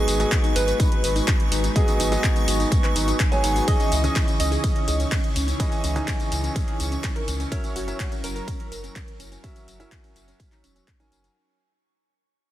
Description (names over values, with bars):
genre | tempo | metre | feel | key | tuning
progressive house | 125 BPM | 4/4 | straight | unclear | A4 = 441 Hz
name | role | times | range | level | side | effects
warm velvety synth lead | melody | 0.0-9.1 s | G#4 to D#5 | -32 LUFS | right 1 dB | chorus, sidechain pumping, tape echo
soft synth bell | second line | 0.0-9.1 s | G#4 to D#5 | -35 LUFS | right 4 dB | none
airy breathy pad | sustained chords | 0.0-11.3 s | C#3 to B4 | -33 LUFS | equal | chorus, sidechain pumping
soft round pluck | arpeggios | 0.0-11.3 s | C#4 to C#5 | -32 LUFS | equal | lush chorus, cassette tape, sidechain pumping, tape echo
clear grand piano | stabs | 0.0-11.3 s | E3 to G#5 | -29 LUFS | right 2 dB | sidechain pumping, tape echo
backwards swelling texture | texture | 0.0-11.4 s | C#6 | -35 LUFS | right 1 dB | built-in reverb, sidechain pumping
round analog bass | bass | 0.1-11.3 s | E1 to C#2 | -25 LUFS | equal | sidechain pumping
big-room dance drum kit | drums | 0.1-11.3 s | handclaps, hi-hat, ride cymbal, tambourine | -29 LUFS | left 1 dB | overdrive, small room ambience
electronic kick drum | drums | 0.3-11.0 s | none | -23 LUFS | equal | small room ambience
room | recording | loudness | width
digital ambience | dense, heavily limited modern master | -20 LUFS | side -13 dB against mid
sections
0.0-11.4 A section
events
drop 0.0-11.4; fade-out 3.7-11.4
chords
0.0 G#m7; 3.7 C#madd9; 7.5 F#7